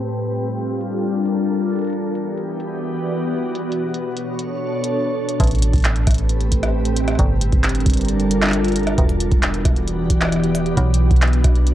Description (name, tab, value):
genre	IDM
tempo	134 BPM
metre	4/4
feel	straight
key	A dorian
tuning	A4 = 440 Hz
part	glassy FM pad	sustained chords	0.0-11.7 s	A2 to D5	-21 LUFS	equal	ensemble chorus, built-in reverb, vintage 12-bit sampler grit, sidechain pumping, cassette tape
part	glitchy drum kit	drums	0.1-11.7 s	handclaps, hi-hat, rim click	-24 LUFS	equal	cassette tape
part	metallic FM bass	bass	5.4-11.7 s	E1 to B1	-19 LUFS	equal	none
part	electronic kick drum	drums	5.4-11.5 s	none	-18 LUFS	equal	cassette tape
room	light reverb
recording	home recording on cassette, low-pass filter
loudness	-17 LUFS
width	side -12 dB against mid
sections	0.0-5.4 A section; 5.4-11.7 B section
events	filter sweep on ambient pad 0.0-5.4; filter sweep 0.0-5.4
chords	0.0 Gm9; 1.8 Em9; 3.6 Bm9; 5.4 Am9; 7.2 Gm9; 9.0 Em9; 10.8 Bm9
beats	| 0.03 0.47 0.92 1.37 | 1.82 2.26 2.71 3.16 | 3.61 4.05 4.50 4.95 | 5.40 5.85 6.29 6.74 | 7.19 7.64 8.09 8.53 | 8.98 9.43 9.88 10.32 | 10.77 11.22 11.67